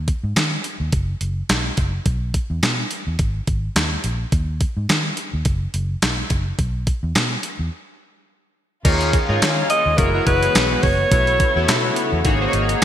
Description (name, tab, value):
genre	early-eighties boogie funk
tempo	106 BPM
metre	4/4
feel	swing 56% on 16ths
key	unclear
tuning	A4 = 437 Hz
part	vintage muted fingered electric bass	bass	0.0-12.8 s	Gb1 to Eb3	-23 LUFS	equal	none
part	crisp 8-bit digital drum machine	drums	0.1-12.8 s	crash cymbal, handclaps, hi-hat, kick drum, snare drum	-20 LUFS	equal	overdrive, gated reverb
part	chorused polysynth	accompaniment	8.8-12.8 s	Bb3 to Db5	-21 LUFS	left 1 dB	none
part	warm studio string section	sustained chords	8.8-12.8 s	C#3 to Gb4	-26 LUFS	equal	none
part	clear alto saxophone	melody	9.7-12.0 s	Bb4 to Eb5	-19 LUFS	equal	digital delay
room	moderate lush hall reverb, RT60 1.9 s, digital ambience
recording	bright 1980s-style digital production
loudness	-17 LUFS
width	side -11 dB against mid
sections	0.0-8.9 A section; 8.9-12.8 B section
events	break 7.7-8.9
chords	0.0 N.C.; 0.9 Gbsus4; 2.1 Bsus4; 3.2 Absus2; 4.3 N.C.; 5.5 Gbsus4; 6.6 Bsus4; 7.7 N.C.; 8.9 Eb9sus4; 10.0 Gb9sus4; 11.1 B9sus4; 12.2 Ab9sus4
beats	0.36 0.93 1.49 | 2.06 2.63 3.19 3.76 | 4.32 4.89 5.46 6.02 | 6.59 7.15 7.72 8.29 | 8.85 9.42 9.98 10.55 | 11.12 11.68 12.25 12.81